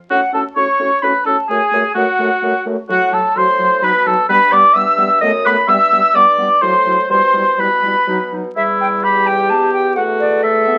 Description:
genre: quick classical-period movement for wind quintet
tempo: 129 BPM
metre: 3/4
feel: straight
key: E minor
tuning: A4 = 440 Hz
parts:
  - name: silver concert flute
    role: melody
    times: 0.1-10.8 s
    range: D5 to E6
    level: -17 LUFS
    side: equal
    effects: none
  - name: warm oboe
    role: second line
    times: 0.1-10.8 s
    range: E4 to E5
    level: -18 LUFS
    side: equal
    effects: none
  - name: dark French horn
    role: accompaniment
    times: 0.1-10.8 s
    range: F#3 to A4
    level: -25 LUFS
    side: equal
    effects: none
  - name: dark clarinet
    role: accompaniment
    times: 0.1-10.8 s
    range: G3 to F#4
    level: -31 LUFS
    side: equal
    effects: none
  - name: mellow bassoon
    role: bass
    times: 0.1-10.8 s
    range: E2 to B2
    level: -26 LUFS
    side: equal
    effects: none
room: moderate studio reverb, RT60 0.5 s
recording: very old 78 rpm record, vinyl crackle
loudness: -14 LUFS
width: mono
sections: 0.0-8.6 A section; 8.6-10.8 B section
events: none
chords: 0.1 F#m/A; 1.5 F#m; 2.9 F#dim/A; 3.8 B; 4.3 Em/G; 5.2 B7/F#; 5.7 Em/G; 6.6 F#m7b5/A; 7.1 Em/B; 8.1 B; 8.6 Em; 10.0 F#m7/E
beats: | 0.11 0.57 1.04 | 1.51 1.97 2.44 | 2.90 3.36 3.83 | 4.29 4.75 5.22 | 5.68 6.15 6.62 | 7.11 7.60 8.08 | 8.56 9.04 9.50 | 9.97 10.44

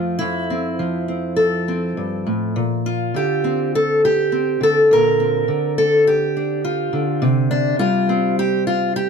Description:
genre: folk, solo fingerstyle acoustic guitar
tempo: 103 BPM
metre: 4/4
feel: straight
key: unclear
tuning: A4 = 439 Hz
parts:
  - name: fingerpicked steel-string acoustic guitar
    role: solo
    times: 0.0-9.1 s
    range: F2 to Bb4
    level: -16 LUFS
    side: equal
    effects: none
room: light reverb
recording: close, detailed microphones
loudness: -16 LUFS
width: side -6 dB against mid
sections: 0.0-9.1 A section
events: none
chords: 0.0 Fmaj7; 2.6 Bbadd9; 7.2 Csus2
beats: | 0.21 0.79 1.37 1.96 | 2.55 3.14 3.73 4.32 | 4.90 5.48 6.06 6.64 | 7.21 7.79 8.37 8.95

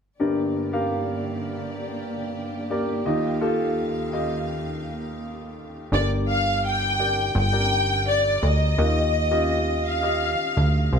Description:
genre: pop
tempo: 84 BPM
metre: 4/4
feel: straight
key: unclear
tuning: A4 = 439 Hz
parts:
  - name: warm upright piano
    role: accompaniment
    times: 0.2-11.0 s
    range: G1 to F5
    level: -26 LUFS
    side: equal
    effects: none
  - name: warm studio string section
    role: sustained chords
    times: 0.2-5.9 s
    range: Eb2 to F5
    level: -31 LUFS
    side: right 2 dB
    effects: none
  - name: warm studio violin section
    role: melody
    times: 5.9-10.9 s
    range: D5 to G5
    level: -23 LUFS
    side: left 1 dB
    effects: none
  - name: plucky analog bass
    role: bass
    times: 5.9-11.0 s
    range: G1 to Eb2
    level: -23 LUFS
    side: equal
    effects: none
room: wet stone room reverb, RT60 1.2 s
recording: band playing live in one room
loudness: -21 LUFS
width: side -6 dB against mid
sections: 0.2-5.9 A section; 5.9-11.0 B section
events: none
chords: 0.2 Gm; 3.1 Ebadd9; 5.9 Gm; 8.8 Ebadd9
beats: | 0.20 0.91 1.63 2.35 | 3.06 3.78 4.49 5.21 | 5.92 6.64 7.35 8.07 | 8.78 9.49 10.21 10.92

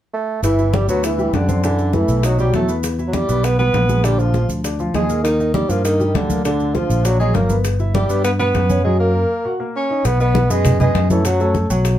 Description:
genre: Afro-Cuban jazz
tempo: 200 BPM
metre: 4/4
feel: straight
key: unclear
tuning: A4 = 438 Hz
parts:
  - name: warm bassoon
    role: melody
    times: 0.1-11.5 s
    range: D3 to C#4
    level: -20 LUFS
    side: right 2 dB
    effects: none
  - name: breathy tenor saxophone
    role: second line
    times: 0.4-11.5 s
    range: D4 to C#5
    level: -26 LUFS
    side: left 3 dB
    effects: none
  - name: fingered electric bass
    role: bass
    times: 0.4-12.0 s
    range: G1 to G2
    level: -18 LUFS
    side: equal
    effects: none
  - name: bongos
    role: percussion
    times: 0.4-12.0 s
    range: none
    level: -29 LUFS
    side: left 5 dB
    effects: none
  - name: congas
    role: percussion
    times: 0.4-12.0 s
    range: none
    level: -22 LUFS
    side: left 1 dB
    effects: none
  - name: maracas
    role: percussion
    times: 0.4-12.0 s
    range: none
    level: -34 LUFS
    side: right 4 dB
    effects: none
  - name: warm grand piano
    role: accompaniment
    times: 0.6-11.9 s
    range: D3 to F#5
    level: -23 LUFS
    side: left 1 dB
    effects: none
room: wet studio ambience, RT60 0.5 s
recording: heard from further back in the room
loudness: -15 LUFS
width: side -12 dB against mid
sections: 0.4-10.1 A section; 10.1-12.0 B section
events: none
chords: 0.4 G6; 1.6 D69; 2.2 B; 2.8 Em; 4.0 Bb7; 5.2 Ebmaj7; 6.4 Daug; 7.6 G6; 8.8 F#; 10.1 B6; 11.2 F#m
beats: 0.13 | 0.43 0.73 1.04 1.34 | 1.64 1.94 2.24 2.54 | 2.84 3.14 3.44 3.74 | 4.04 4.34 4.64 4.94 | 5.25 5.54 5.85 6.15 | 6.45 6.75 7.05 7.35 | 7.65 7.95 8.25 8.55 | 8.85 9.15 9.45 9.75 | 10.05 10.35 10.65 10.95 | 11.25 11.55 11.85

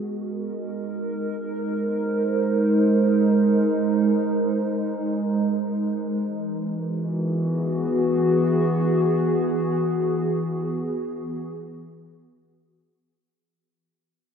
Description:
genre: ambient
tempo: free time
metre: none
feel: none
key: unclear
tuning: A4 = 441 Hz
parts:
  - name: warbly tape-like pad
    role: sustained chords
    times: 0.0-13.4 s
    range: E3 to C5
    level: -21 LUFS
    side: right 1 dB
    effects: chorus, built-in reverb
room: wet huge ambient reverb, RT60 8.1 s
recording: dreamy mix soaked in reverb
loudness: -21 LUFS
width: side -7 dB against mid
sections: 0.0-13.4 A section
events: fade-out 8.6-13.4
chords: 0.0 Ab; 6.2 Eadd9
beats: free time

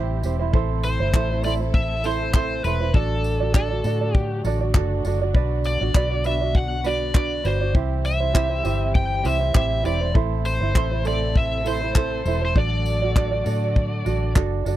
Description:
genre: acoustic pop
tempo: 100 BPM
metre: 4/4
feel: swing 55% on 16ths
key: unclear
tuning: A4 = 440 Hz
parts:
  - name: tenor ukulele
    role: accompaniment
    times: 0.0-14.8 s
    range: C4 to D5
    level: -27 LUFS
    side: right 10 dB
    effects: none
  - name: dark studio string section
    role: sustained chords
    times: 0.0-14.8 s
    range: A2 to A4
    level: -33 LUFS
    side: left 1 dB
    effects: none
  - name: vintage muted fingered electric bass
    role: bass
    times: 0.0-14.8 s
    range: E1 to A2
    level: -24 LUFS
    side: left 1 dB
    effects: none
  - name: natural country drum kit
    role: drums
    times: 0.2-14.8 s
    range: handclaps, kick drum, tambourine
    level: -18 LUFS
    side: left 1 dB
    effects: none
  - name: overdriven slide guitar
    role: melody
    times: 0.8-14.3 s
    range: A4 to G5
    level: -26 LUFS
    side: left 2 dB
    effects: none
room: little or no reverb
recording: dry, close 1970s-style studio recording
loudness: -19 LUFS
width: side -13 dB against mid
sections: 0.0-14.8 A section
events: none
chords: 0.0 C; 2.9 D/A; 5.3 Bm; 7.8 C; 12.6 D/A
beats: | 0.54 1.14 1.74 2.34 | 2.94 3.54 4.14 4.75 | 5.35 5.95 6.55 7.15 | 7.75 8.35 8.95 9.55 | 10.15 10.75 11.35 11.95 | 12.55 13.15 13.76 14.36

